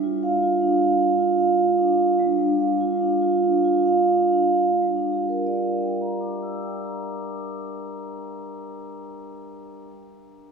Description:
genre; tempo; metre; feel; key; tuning
classical, contemporary piece for solo vibraphone; 82-104 BPM; 4/4; rubato; G dorian; A4 = 444 Hz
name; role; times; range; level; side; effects
vibraphone with medium mallets; solo; 0.0-9.9 s; G3 to E6; -20 LUFS; right 2 dB; none
room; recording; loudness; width
wet cathedral reverb, RT60 5.8 s; heard from further back in the room, small room reverb; -19 LUFS; side -5 dB against mid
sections
0.0-4.8 A section; 4.8-7.6 B section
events
slowing down 0.0-4.8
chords
0.0 G5; 4.8 Gm6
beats
0.42 1.00 1.59 | 2.19 2.80 3.43 4.10 | 4.81 5.52 6.22 6.93

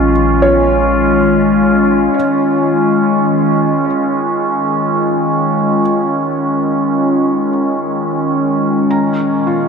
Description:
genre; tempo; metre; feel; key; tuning
ambient; free time; none; none; unclear; A4 = 440 Hz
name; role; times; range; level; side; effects
evolving wavetable pad; sustained chords; 0.0-9.7 s; A#2 to E#4; -12 LUFS; equal; chorus, built-in reverb
felt-muted upright piano; arpeggios; 0.0-9.7 s; A#3 to A#5; -19 LUFS; right 1 dB; ping-pong delay
warm sub bass; bass; 0.0-2.1 s; A#1; -20 LUFS; right 1 dB; none
room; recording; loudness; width
wet huge ambient reverb, RT60 9.3 s; none; -11 LUFS; side -6 dB against mid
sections
0.0-2.1 A section; 2.1-9.7 B section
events
none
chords
0.0 A#m7; 2.1 D#9sus4; 8.9 A#m7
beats
free time

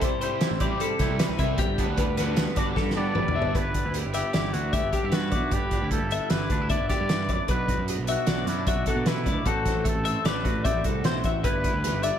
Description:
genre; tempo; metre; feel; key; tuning
math rock and midwest emo; 152 BPM; 5/4; straight; G major; A4 = 440 Hz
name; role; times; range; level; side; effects
twelve-string electric guitar; accompaniment; 0.0-12.2 s; G2 to A4; -33 LUFS; right 6 dB; phaser
twelve-string electric guitar; arpeggios; 0.0-12.2 s; G4 to E5; -30 LUFS; left 7 dB; wide subtle chorus
cranked stack guitar; riff; 0.0-3.6 s; C3 to E4; -33 LUFS; right 1 dB; overdrive, slapback echo
loose indie drum kit; drums; 0.0-12.1 s; hi-hat, kick drum, snare drum, toms; -27 LUFS; right 1 dB; none
fuzz picked electric bass; bass; 0.5-12.1 s; G1 to B2; -30 LUFS; equal; overdrive
growling trumpet; melody; 3.0-12.2 s; E4 to D5; -31 LUFS; equal; slapback echo
room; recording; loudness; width
light reverb, small room ambience; none; -23 LUFS; side -9 dB against mid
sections
0.0-3.6 A section; 3.6-12.2 B section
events
drum fill 2.8-3.6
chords
0.0 C69; 1.6 Gmaj9; 7.5 Bm; 9.5 D9/A; 11.4 G6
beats
0.02 0.41 0.80 1.20 | 1.59 1.98 2.37 2.77 3.16 | 3.55 3.95 4.34 4.74 5.13 | 5.52 5.92 6.31 6.71 7.10 | 7.50 7.89 8.29 8.68 9.08 | 9.47 9.87 10.26 10.66 11.05 | 11.45 11.84

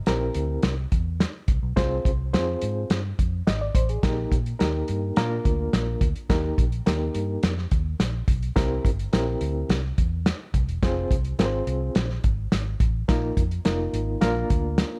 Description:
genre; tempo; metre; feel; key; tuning
uptempo 1960s-style soul; 106 BPM; 4/4; straight; Eb major; A4 = 440 Hz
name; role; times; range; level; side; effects
barky reed electric piano; accompaniment; 0.1-15.0 s; Bb3 to Eb5; -30 LUFS; equal; overdrive, fast tremolo
vintage muted fingered electric bass; bass; 0.1-14.8 s; E1 to Bb2; -30 LUFS; equal; none
warm soul drum kit; drums; 0.1-14.9 s; hi-hat, kick drum, snare drum; -26 LUFS; equal; none
room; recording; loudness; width
little or no reverb; dark, warm production; -25 LUFS; mono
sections
0.0-15.0 A section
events
none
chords
0.0 C7; 1.8 Fm/C; 4.0 Eb/Bb; 5.2 Bb; 6.3 Eb; 8.6 C7; 10.8 Fm; 13.1 Bbsus4; 14.2 Bb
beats
0.07 0.64 1.20 | 1.77 2.33 2.90 3.47 | 4.03 4.60 5.17 5.73 | 6.30 6.87 7.43 8.00 | 8.56 9.13 9.69 10.26 | 10.82 11.39 11.95 12.52 | 13.08 13.65 14.21 14.78

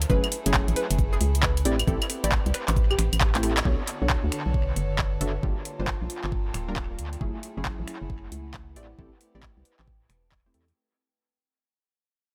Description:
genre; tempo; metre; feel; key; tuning
UK garage, two-step garage; 135 BPM; 4/4; swing 64% on 16ths; unclear; A4 = 440 Hz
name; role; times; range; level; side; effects
clear studio violin section; sustained chords; 0.0-10.7 s; A3 to C#5; -43 LUFS; equal; sidechain pumping
organ-like FM bass; bass; 0.0-10.7 s; D1 to E2; -30 LUFS; equal; none
garage drum kit; drums; 0.0-10.7 s; claves, finger snaps, handclaps, hi-hat, shaker; -31 LUFS; equal; dub echo
hollow square pluck; melody; 0.1-3.1 s; G4 to B4; -36 LUFS; equal; ensemble chorus, tape echo
punchy chord stab; stabs; 0.1-10.7 s; F#3 to E5; -34 LUFS; equal; chorus, analog delay
electronic kick drum; drums; 0.1-10.4 s; none; -30 LUFS; equal; none
warbly tape-like pad; texture; 3.7-10.8 s; D3 to A5; -41 LUFS; equal; chorus, built-in reverb, sidechain pumping
room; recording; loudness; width
light reverb, digital ambience; echo-heavy mix; -26 LUFS; mono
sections
0.0-3.7 A section; 3.7-10.8 B section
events
drop 0.0-3.7; drum fill 3.3-3.7; band accent 3.5; fade-out 3.7-10.8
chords
0.1 F#m9; 1.7 Am9; 3.7 Bm9; 5.4 Gm9; 7.2 F#m9; 8.8 Am9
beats
| 0.10 0.54 0.99 1.43 | 1.88 2.32 2.76 3.21 | 3.65 4.10 4.54 4.99 | 5.43 5.88 6.32 6.76 | 7.21 7.65 8.10 8.54 | 8.99 9.43 9.88 10.32

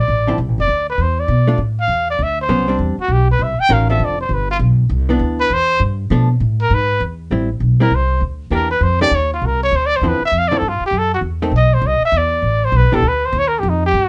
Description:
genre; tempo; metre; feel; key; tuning
jazz, small-group swing and bop; 199 BPM; 4/4; swing 62% on 8ths; C major, A minor from 7.3 s; A4 = 439 Hz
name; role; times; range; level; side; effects
warm trumpet; melody; 0.0-14.1 s; D#4 to G5; -19 LUFS; equal; none
upright bass; bass; 0.0-14.1 s; E1 to B2; -19 LUFS; equal; none
hollow-body jazz guitar; accompaniment; 0.3-13.0 s; D3 to Bb4; -22 LUFS; equal; none
room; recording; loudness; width
moderate studio reverb, RT60 0.5 s; band playing live in one room, nothing above 10.6 kHz; -16 LUFS; mono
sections
0.0-7.3 A section; 7.3-14.1 A section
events
trumpet solo 0.0-14.1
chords
0.1 Dm9; 1.3 Bm7b5; 1.9 Dmadd9; 2.5 Cmaj9#11; 3.7 Dm7; 4.3 G; 4.9 Cmaj9; 6.1 Bm7b5; 6.7 E; 7.3 Am7; 8.5 Em7b5; 9.1 C#maj13; 9.7 Dm9; 10.9 F#m7b5; 11.5 B; 12.1 Em7; 13.3 D#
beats
| 0.09 0.39 0.69 0.99 | 1.29 1.59 1.89 2.19 | 2.50 2.80 3.10 3.40 | 3.70 4.00 4.30 4.60 | 4.90 5.20 5.50 5.81 | 6.11 6.41 6.71 7.01 | 7.31 7.61 7.91 8.21 | 8.52 8.82 9.12 9.42 | 9.72 10.02 10.32 10.62 | 10.93 11.23 11.53 11.83 | 12.13 12.43 12.73 13.03 | 13.34 13.64 13.94

